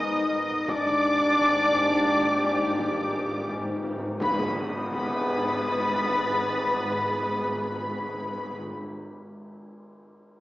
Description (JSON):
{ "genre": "cinematic, suspense film score", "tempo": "85 BPM", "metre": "5/4", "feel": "straight", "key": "Ab hungarian minor", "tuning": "A4 = 440 Hz", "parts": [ { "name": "muted studio violin section", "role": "melody", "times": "0.0-8.5 s", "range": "Cb6 to Eb6", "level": "-28 LUFS", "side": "left 1 dB", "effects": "none" }, { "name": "muted symphonic violin section", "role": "second line", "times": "0.0-8.5 s", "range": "Cb5 to Eb5", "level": "-30 LUFS", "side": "left 1 dB", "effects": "none" }, { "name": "muted studio viola section", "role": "accompaniment", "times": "0.0-8.5 s", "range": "Bb3 to Bb4", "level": "-35 LUFS", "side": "equal", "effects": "none" }, { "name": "mellow French horn section", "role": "sustained chords", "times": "0.0-8.2 s", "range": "Cb4 to Eb4", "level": "-31 LUFS", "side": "equal", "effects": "none" }, { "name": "concert harp", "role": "riff", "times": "0.0-7.0 s", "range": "Ab2 to Ab3", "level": "-30 LUFS", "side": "left 2 dB", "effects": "none" }, { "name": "muted symphonic cello section", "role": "bass", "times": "0.0-8.5 s", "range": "Ab2", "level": "-39 LUFS", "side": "equal", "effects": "none" }, { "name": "muted symphonic double bass section", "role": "bass", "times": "0.0-8.5 s", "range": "Ab1", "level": "-42 LUFS", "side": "equal", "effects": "none" }, { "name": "impact", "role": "sound effects", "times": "4.2-8.2 s", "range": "none", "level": "-42 LUFS", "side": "equal", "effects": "none" }, { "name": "taiko ensemble", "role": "drums", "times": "0.5-5.6 s", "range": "none", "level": "-42 LUFS", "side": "equal", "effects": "none" }, { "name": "timpani", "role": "percussion", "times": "0.7-8.9 s", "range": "Ab2", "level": "-38 LUFS", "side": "equal", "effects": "none" }, { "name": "tam-tam", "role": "percussion", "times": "4.2-7.0 s", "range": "none", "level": "-38 LUFS", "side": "equal", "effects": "none" }, { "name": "muted symphonic violin section", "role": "texture", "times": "4.2-7.4 s", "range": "Eb6 to A6", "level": "-36 LUFS", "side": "left 1 dB", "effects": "none" } ], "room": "wet recital hall reverb, RT60 1.8 s", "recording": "recorded in a church or concert hall, small speaker sound", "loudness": "-23 LUFS", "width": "side -17 dB against mid", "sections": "0.0-4.2 A section; 4.2-7.8 B section", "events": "impact 0.0-0.7, 4.2-7.8; timpani fill 0.7-4.2; band accent 4.2-4.9", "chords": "0.0 Abmadd9; 0.7 Gm/Ab; 4.2 Abm" }